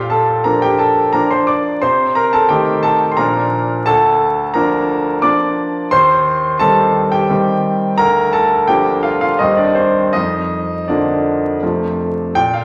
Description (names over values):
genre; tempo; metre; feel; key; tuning
classical-period piano sonatina; 87 BPM; 3/4; rubato; Bb major from 3.9 s; A4 = 440 Hz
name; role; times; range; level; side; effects
bright grand piano; solo; 0.0-12.6 s; D2 to D6; -15 LUFS; equal; none
room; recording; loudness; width
wet recital hall reverb, RT60 1.6 s; vinyl crackle; -15 LUFS; mono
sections
0.0-12.4 A section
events
none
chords
0.0 Bb; 1.8 Adim/C; 3.2 Bb; 3.9 Bb/D; 5.9 Cm/Eb; 8.0 Bb/D; 9.4 Cm/Eb; 10.1 Bb/F; 11.6 F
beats
0.45 1.14 | 1.83 2.50 3.18 | 3.87 4.54 5.23 | 5.92 6.61 7.30 | 7.99 8.69 9.40 | 10.13 10.88 11.62 | 12.36